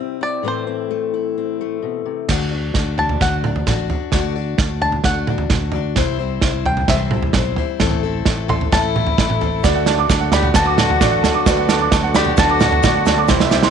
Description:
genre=indie folk with a building arrangement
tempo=131 BPM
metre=4/4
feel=straight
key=D mixolydian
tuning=A4 = 440 Hz
part: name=bluegrass banjo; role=melody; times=0.0-13.3 s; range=C5 to C6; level=-22 LUFS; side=left 1 dB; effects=none
part: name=fingerpicked steel-string acoustic guitar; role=accompaniment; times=0.0-2.3 s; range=A2 to E4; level=-22 LUFS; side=left 10 dB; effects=none
part: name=picked plugged-in steel-string acoustic guitar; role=accompaniment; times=2.3-13.7 s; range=A2 to D5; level=-24 LUFS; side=left 12 dB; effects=none
part: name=fingered electric bass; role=bass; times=2.3-13.7 s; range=A1 to D2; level=-23 LUFS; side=equal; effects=none
part: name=natural country drum kit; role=drums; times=2.3-13.7 s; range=crash cymbal, kick drum, snare drum, toms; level=-18 LUFS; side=right 3 dB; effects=none
part: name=dark fiddle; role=second line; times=8.7-13.3 s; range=E4 to G4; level=-22 LUFS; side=left 10 dB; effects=none
part: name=warm upright piano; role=accompaniment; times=9.6-13.7 s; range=C2 to E5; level=-24 LUFS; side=right 12 dB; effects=none
part: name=bright brass ensemble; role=sustained chords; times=9.6-13.7 s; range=C3 to F#4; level=-28 LUFS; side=equal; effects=none
part: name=warm upright piano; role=arpeggios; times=9.6-13.7 s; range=C5 to D6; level=-20 LUFS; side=right 8 dB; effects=none
part: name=egg shaker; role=percussion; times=9.6-13.6 s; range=none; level=-34 LUFS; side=left 18 dB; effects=none
room=light reverb, small room ambience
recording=1960s-style stereo with parts hard left and right, nothing above 10.5 kHz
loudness=-15 LUFS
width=side -7 dB against mid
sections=0.0-2.3 A section; 2.3-13.7 B section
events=build-up 2.3-13.7; drum fill 2.3-13.7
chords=0.5 Am; 2.3 D; 6.0 C; 7.8 Am; 9.6 D

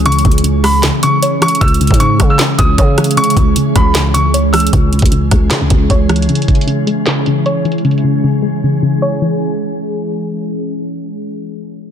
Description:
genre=hip hop, trap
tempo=154 BPM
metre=4/4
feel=half-time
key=C# minor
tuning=A4 = 444 Hz
part: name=soft round pluck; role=accompaniment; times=0.0-10.2 s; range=C#3 to C#5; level=-16 LUFS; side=left 3 dB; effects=chorus
part: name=glassy FM pad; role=sustained chords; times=0.0-10.9 s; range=E3 to G#4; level=-18 LUFS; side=right 2 dB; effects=ensemble chorus, built-in reverb
part: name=growling 808-style bass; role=bass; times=0.0-6.3 s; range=C#2 to C#3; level=-15 LUFS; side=equal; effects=none
part: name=bright concert grand piano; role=melody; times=0.1-4.7 s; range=B5 to E6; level=-16 LUFS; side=equal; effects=digital delay
part: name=trap drum kit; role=drums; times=0.1-8.0 s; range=handclaps, hi-hat, kick drum, rim click, snare drum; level=-14 LUFS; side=equal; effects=none
room=light reverb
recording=dense, heavily limited modern master, low-pass filter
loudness=-10 LUFS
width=side -8 dB against mid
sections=0.0-4.7 A section; 4.7-11.0 B section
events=filter sweep 4.7-11.0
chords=0.0 C#m

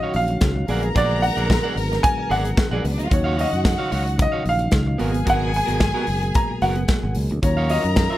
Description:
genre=disco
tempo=111 BPM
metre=4/4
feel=straight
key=Eb minor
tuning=A4 = 440 Hz
part: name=clear concert grand piano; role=melody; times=0.0-8.2 s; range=Db5 to Bb5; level=-24 LUFS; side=equal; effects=none
part: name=rich chamber string section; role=second line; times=0.0-8.2 s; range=Ab3 to Bb5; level=-28 LUFS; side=equal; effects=none
part: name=electric guitar at the edge of break-up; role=accompaniment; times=0.0-8.2 s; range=Cb4 to Gb5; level=-28 LUFS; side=right 4 dB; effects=none
part: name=mellow tonewheel organ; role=sustained chords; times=0.0-8.2 s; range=Cb3 to Gb4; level=-29 LUFS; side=left 1 dB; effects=slow rotary speaker
part: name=fingered electric bass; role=bass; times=0.1-8.1 s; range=Gb1 to Gb2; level=-23 LUFS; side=equal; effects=none
part: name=modern studio drum kit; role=drums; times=0.1-8.1 s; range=hi-hat, kick drum, snare drum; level=-22 LUFS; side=equal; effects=none
room=light reverb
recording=none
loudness=-18 LUFS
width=side -14 dB against mid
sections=0.0-8.2 A section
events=none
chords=0.0 Ebm9; 0.7 Bb7b9b13; 3.1 Ebm9; 5.0 Abm9; 7.4 Ebm9

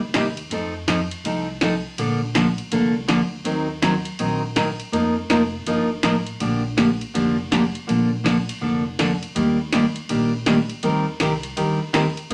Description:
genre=country, western swing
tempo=163 BPM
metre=4/4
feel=swing 63% on 8ths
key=Bb major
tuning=A4 = 440 Hz
part: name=upright bass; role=bass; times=0.0-12.3 s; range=F1 to F2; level=-34 LUFS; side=equal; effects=none
part: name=picked steel-string acoustic guitar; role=accompaniment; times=0.1-12.3 s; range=C3 to Bb4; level=-23 LUFS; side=equal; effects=none
part: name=punchy analog drum machine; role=drums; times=0.1-12.3 s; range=hi-hat, ride cymbal, snare drum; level=-29 LUFS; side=equal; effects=none
room=wet small room reverb, RT60 0.6 s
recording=none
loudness=-22 LUFS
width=mono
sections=0.0-12.3 A section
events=none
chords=0.0 Cm7; 0.5 F7; 2.0 Bbmaj7; 3.5 Ebm6; 4.9 F9sus4; 6.4 Bb6; 7.9 Bbmaj7; 9.4 Ebmaj7; 10.8 Cm7

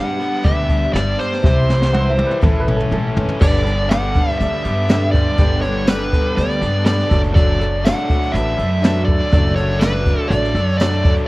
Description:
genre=folk rock and heartland rock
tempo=122 BPM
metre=4/4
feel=straight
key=D major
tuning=A4 = 440 Hz
part: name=dark smooth lead guitar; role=melody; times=0.0-11.1 s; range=B4 to F#5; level=-21 LUFS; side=equal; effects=overdrive
part: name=picked twelve-string acoustic guitar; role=accompaniment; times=0.0-11.3 s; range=G2 to A4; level=-26 LUFS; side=left 3 dB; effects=none
part: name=raw garage guitar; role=riff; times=0.0-11.3 s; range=G2 to A4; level=-24 LUFS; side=equal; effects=overdrive, spring reverb
part: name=jazz brush drum kit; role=drums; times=0.2-11.3 s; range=crash cymbal, hi-hat, kick drum, snare drum, toms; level=-17 LUFS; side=equal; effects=none
part: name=upright bass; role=bass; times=0.5-11.1 s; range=F#1 to G2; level=-20 LUFS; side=equal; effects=none
part: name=clear upright piano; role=second line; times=1.9-3.3 s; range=A4 to F#5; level=-26 LUFS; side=right 1 dB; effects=none
part: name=warm baby grand piano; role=accompaniment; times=3.4-11.2 s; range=D4 to E5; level=-29 LUFS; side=right 2 dB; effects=none
part: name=tambourine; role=percussion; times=3.9-10.9 s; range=none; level=-38 LUFS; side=right 3 dB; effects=none
room=light reverb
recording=worn, warbling old tape, cassette tape, warbly pitch drift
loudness=-14 LUFS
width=side -20 dB against mid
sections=0.0-3.4 A section; 3.4-11.3 B section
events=drum fill 1.4-3.4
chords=0.0 G; 1.4 C; 2.4 A; 3.4 Gadd9; 7.1 D/F#

